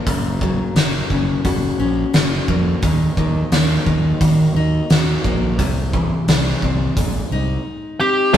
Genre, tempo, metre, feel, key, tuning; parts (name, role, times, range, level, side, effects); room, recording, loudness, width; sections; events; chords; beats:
quiet-loud alternative rock; 87 BPM; 4/4; straight; A4 = 441 Hz
picked steel-string acoustic guitar; arpeggios; 0.0-8.4 s; Gb2 to Gb4; -23 LUFS; left 4 dB
fuzz fingered electric bass; bass; 0.1-8.4 s; Gb1 to Eb3; -19 LUFS; right 1 dB; overdrive
oversized low-tuned drum kit; drums; 0.1-8.4 s; crash cymbal, hi-hat, kick drum, snare drum; -19 LUFS; equal
octave-fuzz lead guitar; melody; 8.0-8.4 s; G4 to G5; -14 LUFS; equal; distortion
raw garage guitar; riff; 8.3-8.4 s; Db3; -13 LUFS; left 11 dB; overdrive, spring reverb
thick fuzz guitar; riff; 8.3-8.4 s; Db3; -10 LUFS; right 6 dB; distortion
light reverb; rough rehearsal-room recording; -15 LUFS; side -10 dB against mid
0.0-8.3 A section
0.1 Gb; 2.8 Ebm; 5.6 C; 7.0 Ab
| 0.07 0.76 1.45 2.14 | 2.83 3.52 4.21 4.90 | 5.59 6.28 6.97 7.66 | 8.35